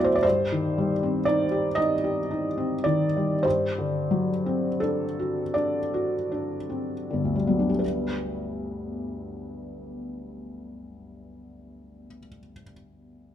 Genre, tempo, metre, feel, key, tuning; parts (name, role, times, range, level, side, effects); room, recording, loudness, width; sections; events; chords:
classical, romantic nocturne for solo piano; 24-39 BPM (dotted quarters); 6/8; rubato; G major; A4 = 441 Hz
felt-muted upright piano; solo; 0.0-13.3 s; G1 to E5; -24 LUFS; equal
light reverb; -23 LUFS; side -10 dB against mid
0.0-7.8 A section; 7.8-11.7 B section
slowing down 0.0-7.8
0.2 Cm/G; 3.4 D7/G; 7.8 G